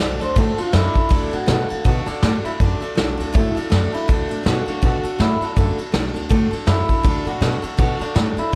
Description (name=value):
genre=rockabilly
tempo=162 BPM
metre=4/4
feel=swing 59% on 8ths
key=D major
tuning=A4 = 441 Hz
part: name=electric guitar through a small old amp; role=melody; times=0.0-8.5 s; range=D4 to D5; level=-27 LUFS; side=equal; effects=spring reverb, analog delay
part: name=picked steel-string acoustic guitar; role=accompaniment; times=0.0-8.6 s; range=D3 to A4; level=-28 LUFS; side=equal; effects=none
part: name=upright bass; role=bass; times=0.0-8.4 s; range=B1 to B2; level=-24 LUFS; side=equal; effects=none
part: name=soft brush drum kit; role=drums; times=0.2-8.4 s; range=crash cymbal, kick drum, ride cymbal, snare drum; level=-23 LUFS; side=equal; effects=none
room=little or no reverb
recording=none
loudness=-19 LUFS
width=mono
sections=0.0-1.1 A section; 1.1-8.6 B section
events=clean electric guitar solo 0.0-1.1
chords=0.0 D